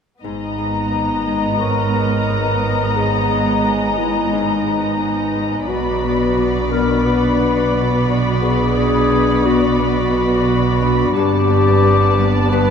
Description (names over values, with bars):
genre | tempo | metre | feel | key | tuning
cinematic, suspense film score | 88 BPM | 4/4 | straight | G# minor | A4 = 438 Hz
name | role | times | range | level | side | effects
muted studio violin section | melody | 0.2-12.7 s | A5 to B5 | -24 LUFS | left 4 dB | none
muted studio violin section | second line | 0.2-12.7 s | D5 to D#5 | -26 LUFS | left 4 dB | none
warm clarinet | second line | 0.2-12.7 s | D#4 to B4 | -20 LUFS | left 3 dB | none
muted studio viola section | accompaniment | 0.2-12.7 s | B3 | -25 LUFS | right 2 dB | none
glassy FM pad | sustained chords | 0.8-12.7 s | B3 to D6 | -25 LUFS | left 3 dB | ensemble chorus, built-in reverb
Celtic harp | riff | 0.2-12.7 s | G2 to B3 | -24 LUFS | left 9 dB | none
muted studio cello section | bass | 0.2-12.7 s | G2 to B2 | -21 LUFS | right 4 dB | none
muted studio double bass section | bass | 0.2-12.7 s | G1 to B1 | -24 LUFS | right 5 dB | none
vibraphone with soft mallets | texture | 0.6-5.7, 10.8-12.7 s | C#5 to C#6 | -29 LUFS | right 4 dB | none
room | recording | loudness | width
moderate scoring stage reverb, RT60 1.5 s | none | -14 LUFS | side -7 dB against mid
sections
0.2-12.7 A section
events
none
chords
0.2 G#madd9; 5.7 Bmadd9; 11.2 Gadd9